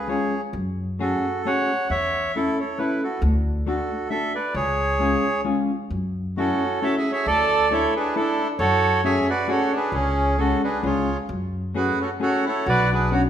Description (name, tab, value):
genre	musette waltz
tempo	134 BPM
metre	3/4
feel	swing 55% on 8ths, rubato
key	F# minor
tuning	A4 = 441 Hz
part	bandoneon	melody	0.0-13.2 s	C#4 to F#5	-23 LUFS	right 2 dB	none
part	hollow-body jazz guitar	accompaniment	0.1-13.3 s	G#3 to A4	-26 LUFS	left 2 dB	none
part	upright bass	bass	0.5-13.2 s	B1 to F#2	-26 LUFS	equal	none
part	accordion	second line	6.4-13.2 s	C#4 to A4	-27 LUFS	right 3 dB	none
room	wet recital hall reverb, RT60 1.5 s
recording	minimal, uncompressed stereo recording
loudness	-20 LUFS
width	side -9 dB against mid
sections	0.0-13.3 A section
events	none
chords	0.0 C#; 0.5 F#madd9; 1.9 A/E; 3.2 D; 4.5 C#; 5.9 F#m7; 7.3 Dsus2; 8.6 F#madd9; 9.9 C#sus4; 10.8 C#; 11.3 F#madd9; 12.7 Bmadd9